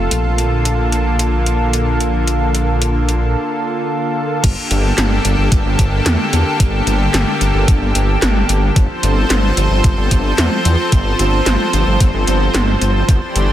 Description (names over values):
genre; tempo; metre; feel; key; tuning
synthwave; 111 BPM; 4/4; straight; G minor; A4 = 441 Hz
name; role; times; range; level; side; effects
lush unison pad; sustained chords; 0.0-13.5 s; D3 to C5; -18 LUFS; equal; chorus, sidechain pumping
wide detuned saw bass; bass; 0.0-13.5 s; G1 to E2; -16 LUFS; equal; chorus, tube saturation
80s electronic pad drums; drums; 0.1-13.5 s; crash cymbal, handclaps, hi-hat, snare drum; -19 LUFS; equal; none
electronic kick drum; drums; 4.4-13.2 s; none; -14 LUFS; equal; none
room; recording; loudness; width
light reverb, digital ambience; dense, heavily limited modern master; -13 LUFS; side -12 dB against mid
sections
0.0-4.4 A section; 4.4-13.5 B section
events
break 3.4-4.4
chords
0.1 Bbmaj7; 4.4 Gmadd9; 8.8 F/G